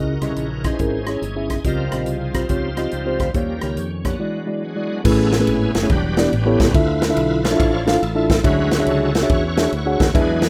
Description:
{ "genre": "uptempo gospel", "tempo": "141 BPM", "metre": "4/4", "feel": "swing 65% on 8ths", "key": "unclear", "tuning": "A4 = 440 Hz", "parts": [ { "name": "mellow tine electric piano", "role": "accompaniment", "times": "0.0-10.5 s", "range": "A2 to F#5", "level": "-22 LUFS", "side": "equal", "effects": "none" }, { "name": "bright tonewheel organ", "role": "sustained chords", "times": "0.0-10.5 s", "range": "Fb3 to D5", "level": "-29 LUFS", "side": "equal", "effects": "slow rotary speaker, overdrive, chorus vibrato" }, { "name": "mellow French horn section", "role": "sustained chords", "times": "0.0-5.0 s", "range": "none", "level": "barely audible", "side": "none", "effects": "none" }, { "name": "fingered electric bass", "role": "bass", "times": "0.0-10.5 s", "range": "E1 to F2", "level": "-27 LUFS", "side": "equal", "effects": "none" }, { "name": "natural country drum kit", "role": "drums", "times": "0.2-10.5 s", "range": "crash cymbal, hi-hat, kick drum, ride cymbal, rim click, snare drum", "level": "-23 LUFS", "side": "equal", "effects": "none" } ], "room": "moderate small room reverb, RT60 0.5 s", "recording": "rough home demo mix", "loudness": "-19 LUFS", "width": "mono", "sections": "0.0-5.1 A section; 5.1-10.5 B section", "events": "tonewheel organ solo 0.0-5.1, 5.1-10.5", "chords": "0.0 Dbmadd9; 1.6 Dbmaj9#11; 3.4 Eb7; 4.2 E9; 5.1 Amaj9; 5.9 Em7; 6.3 A9; 6.8 Dmadd9; 8.4 Dmaj9#11", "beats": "0.37 0.80 1.22 | 1.65 2.07 2.50 2.92 | 3.35 3.77 4.20 4.63 | 5.05 5.48 5.90 6.33 | 6.75 7.17 7.60 8.02 | 8.45 8.87 9.30 9.72 | 10.15" }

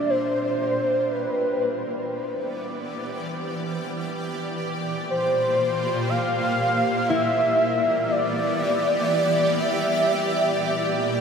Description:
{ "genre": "ambient", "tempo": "free time", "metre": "none", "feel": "none", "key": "unclear", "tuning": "A4 = 439 Hz", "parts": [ { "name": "warm velvety synth lead", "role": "melody", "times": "0.0-11.1 s", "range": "B4 to F5", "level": "-23 LUFS", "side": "equal", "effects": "chorus, ping-pong delay" }, { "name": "shimmering ambient pad", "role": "sustained chords", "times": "0.0-11.2 s", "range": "Bb2 to D5", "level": "-27 LUFS", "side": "equal", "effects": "chorus, built-in reverb" }, { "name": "concert harp", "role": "arpeggios", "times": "0.0-1.6, 7.1-10.4 s", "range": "D4 to E4", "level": "-32 LUFS", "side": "left 2 dB", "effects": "ping-pong delay" }, { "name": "overtone-sweeping drone", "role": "drone", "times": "0.0-11.2 s", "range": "G3 to G4", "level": "-34 LUFS", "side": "right 1 dB", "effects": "chorus, built-in reverb" } ], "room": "wet huge ambient reverb, RT60 7.4 s", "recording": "none", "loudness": "-21 LUFS", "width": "side -6 dB against mid", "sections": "0.0-11.2 A section", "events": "fade-in on ambient pad 0.0-11.2; fade-in on synth drone 0.0-11.2", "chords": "0.0 Bbsus2; 1.1 Em7; 4.1 Bbsus2; 7.1 Em7; 10.1 Bbsus2", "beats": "free time" }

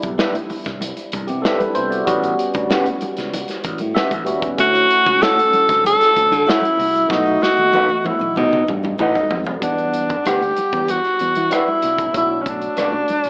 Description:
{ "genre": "lush 1970s-style soul", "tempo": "95 BPM", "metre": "4/4", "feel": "straight", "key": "E minor", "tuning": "A4 = 441 Hz", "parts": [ { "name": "barky tine electric piano", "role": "accompaniment", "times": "0.0-13.3 s", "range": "G3 to F#5", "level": "-26 LUFS", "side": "equal", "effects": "phaser" }, { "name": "modern bright fingered electric bass", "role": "bass", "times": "0.0-13.3 s", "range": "A1 to E3", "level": "-28 LUFS", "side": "equal", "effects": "none" }, { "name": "modern studio drum kit", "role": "drums", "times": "0.0-13.3 s", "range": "hi-hat, kick drum, rim click, snare drum, toms", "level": "-28 LUFS", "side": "equal", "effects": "none" }, { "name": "egg shaker", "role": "percussion", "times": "0.0-9.6 s", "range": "none", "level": "-57 LUFS", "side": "equal", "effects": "none" }, { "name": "electric guitar through a small old amp", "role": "riff", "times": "0.2-12.9 s", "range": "B3 to F#5", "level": "-27 LUFS", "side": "equal", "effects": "warbly pitch drift" }, { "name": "congas", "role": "percussion", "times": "0.2-13.2 s", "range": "none", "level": "-36 LUFS", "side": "equal", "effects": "none" }, { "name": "breathy tenor saxophone", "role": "melody", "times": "4.6-13.3 s", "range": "C#4 to A4", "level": "-18 LUFS", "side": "equal", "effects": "slapback echo" } ], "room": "light reverb", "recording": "AM radio sound", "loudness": "-18 LUFS", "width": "mono", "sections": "0.0-9.6 A section; 9.6-13.3 B section", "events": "tine electric piano fill 3.6-4.6; drum fill 7.1-9.6", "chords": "0.0 Cmaj9; 2.1 A13; 4.6 Dmaj9; 7.1 B7; 9.6 Em9; 12.1 Bm7", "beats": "0.18 0.81 1.44 | 2.07 2.70 3.33 3.96 | 4.59 5.21 5.84 6.47 | 7.10 7.73 8.36 8.99 | 9.62 10.25 10.88 11.51 | 12.14 12.78" }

